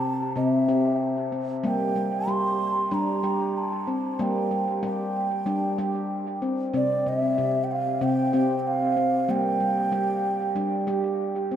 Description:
world meditative, meditative tuned percussion; 94 BPM; 4/4; straight; G dorian; A4 = 441 Hz
breathy mellow bansuri; melody; 0.0-11.2 s; D5 to C6; -27 LUFS; right 2 dB; dub echo
handpan; arpeggios; 0.0-11.6 s; C3 to G4; -25 LUFS; left 1 dB; dub echo
wet spring reverb, RT60 2.1 s; echo-heavy mix; -23 LUFS; side -9 dB against mid
0.0-11.6 A section
0.0 C; 1.6 Gm; 6.7 C5; 9.3 Gm

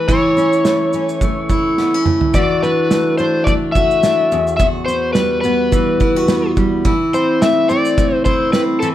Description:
acoustic pop; 106 BPM; 4/4; swing 55% on 16ths; A4 = 439 Hz
overdriven slide guitar; melody; 0.0-8.9 s; A4 to E5; -17 LUFS; left 3 dB
picked steel-string acoustic guitar; accompaniment; 0.0-8.9 s; E2 to F#4; -16 LUFS; right 1 dB
loose indie drum kit; drums; 0.1-8.9 s; kick drum, shaker, snare drum, toms; -19 LUFS; right 1 dB
moderate studio reverb, RT60 0.7 s; -13 LUFS; side -12 dB against mid
0.0-2.3 A section; 2.3-8.9 A section
drum fill 1.8-2.3
0.0 A/E; 2.3 Dadd9/E; 4.3 Emadd9; 6.9 Am/E

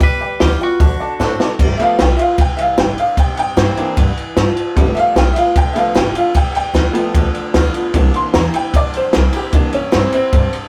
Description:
rockabilly; 151 BPM; 4/4; straight; G mixolydian; A4 = 440 Hz
twangy electric guitar; melody; 0.0-1.4 s; F#4 to B4; -24 LUFS; equal
picked swing-style acoustic guitar; accompaniment; 0.0-10.7 s; G2 to F#4; -25 LUFS; equal
tack piano; accompaniment; 0.0-10.5 s; E3 to C6; -20 LUFS; equal
upright bass; bass; 0.0-10.6 s; G1 to A2; -21 LUFS; equal
compact cocktail drum kit; drums; 0.0-10.6 s; crash cymbal, hi-hat, kick drum, ride cymbal, snare drum; -18 LUFS; equal
light reverb; rough rehearsal-room recording; -15 LUFS; mono
0.0-1.6 A section; 1.6-10.7 B section
drum fill 1.2-1.6; honky-tonk piano solo 1.6-10.7
0.0 G7; 0.8 D7; 1.6 G7; 3.2 C7; 4.8 G7; 7.9 C7

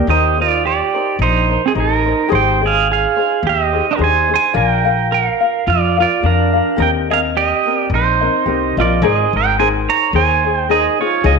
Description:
Hawaiian; 107 BPM; 4/4; swing 56% on 8ths; Eb major; A4 = 440 Hz
pedal steel guitar; melody; 0.0-11.3 s; C4 to Bb5; -15 LUFS; right 8 dB
ukulele; accompaniment; 0.0-11.4 s; C4 to F5; -20 LUFS; left 11 dB
upright bass; bass; 0.0-11.4 s; Ab1 to F2; -18 LUFS; left 2 dB
wet echo chamber reverb, RT60 1.4 s, small room ambience; 1960s-style stereo with parts hard left and right; -13 LUFS; side -4 dB against mid
0.1-9.0 A section; 9.0-11.4 B section
0.1 Eb6; 2.3 Abmaj7; 4.5 Bb; 6.8 Eb6; 9.0 Abadd9

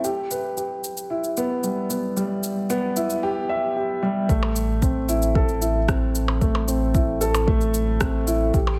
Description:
piano and strings electronica; 113 BPM; 4/4; straight; A4 = 442 Hz
dark concert grand piano; riff; 0.0-8.7 s; G3 to E5; -26 LUFS; equal; tape echo
warm sub bass; bass; 0.0-8.8 s; A1; -27 LUFS; equal; tube saturation, sidechain pumping, high-pass filter
electronic shaker, percussion blips and rim click; drums; 0.0-8.8 s; -31 LUFS; equal
electronic kick drum; drums; 4.3-8.6 s; -24 LUFS; equal
moderate scoring stage reverb, RT60 1.9 s; -23 LUFS; mono
0.0-4.3 A section; 4.3-8.8 B section
build-up 0.0-4.3; drop 4.3-8.8
0.0 Em/A; 4.3 Am

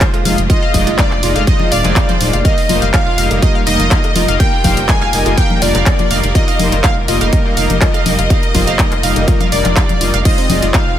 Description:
progressive house; 123 BPM; 4/4; straight; A4 = 439 Hz
plucky unison lead; melody; 0.0-11.0 s; C5 to Ab5; -20 LUFS; equal; wide subtle chorus, sidechain pumping, digital delay
warm symphonic violin section; second line; 0.0-11.0 s; C5 to Ab5; -24 LUFS; left 1 dB; sidechain pumping, digital delay
bright studio string section; sustained chords; 0.0-11.0 s; Eb3 to Bb4; -25 LUFS; right 1 dB; vintage 12-bit sampler grit, sidechain pumping
soft supersaw; stabs; 0.0-10.8 s; G3 to Eb5; -21 LUFS; equal; sidechain pumping, digital delay
big-room dance drum kit; drums; 0.0-10.8 s; crash cymbal, handclaps, hi-hat; -19 LUFS; equal; sidechain pumping on hats, sidechain pumping on cymbals
electronic kick drum; drums; 0.0-10.8 s; -14 LUFS; equal
analog pluck; arpeggios; 0.1-10.8 s; C4 to F5; -21 LUFS; equal; chorus, sidechain pumping, digital delay
cowbell and congas; percussion; 0.1-10.6 s; -22 LUFS; left 5 dB; sidechain pumping on perc
round analog bass; bass; 0.3-11.0 s; Eb1 to F1; -18 LUFS; equal; sidechain pumping
digital ambience; -10 LUFS; side -11 dB against mid
0.0-11.0 A section
0.0 Fm7; 2.4 Eb/F; 10.3 Fm7

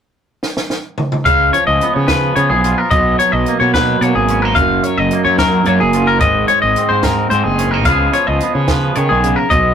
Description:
math rock and midwest emo; 73 BPM (dotted quarters); 6/8; straight; A4 = 440 Hz
compact cocktail drum kit; drums; 0.4-9.6 s; hi-hat, kick drum, snare drum, toms; -19 LUFS; right 1 dB
twangy electric guitar; accompaniment; 1.3-9.7 s; F#2 to G#4; -18 LUFS; right 4 dB
twangy electric guitar; arpeggios; 1.3-9.7 s; G#4 to E#5; -14 LUFS; left 3 dB
fuzz fingered electric bass; bass; 1.3-9.7 s; F#1 to C#3; -17 LUFS; equal; overdrive
moderate small room reverb, RT60 0.6 s; rough rehearsal-room recording, tube saturation; -12 LUFS; side -8 dB against mid
0.0-1.3 A section; 1.3-9.7 B section
drum fill 0.4-1.3
0.0 N.C.; 1.3 C#7; 2.9 Bmaj7; 4.6 F#maj9; 6.2 G#7; 7.9 C#7

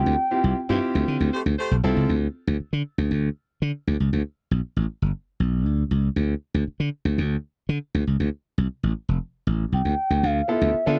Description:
funk; 118 BPM; 4/4; straight; A4 = 435 Hz
gliding portamento lead; melody; 0.0-0.8, 9.7-11.0 s; E5 to G5; -27 LUFS; equal; chorus, slapback echo
warm grand piano; accompaniment; 0.0-2.1, 10.5-11.0 s; B3 to A4; -27 LUFS; equal
slap bass; bass; 0.0-11.0 s; F1 to D3; -24 LUFS; equal
warm horn section; second line; 1.3-1.7 s; A3 to C5; -29 LUFS; equal
little or no reverb; dry, close 1970s-style studio recording; -25 LUFS; mono
0.0-2.1 A section; 2.1-10.2 B section
0.0 Dm11; 2.1 G (rootless); 6.2 N.C.; 10.2 G13 (rootless)

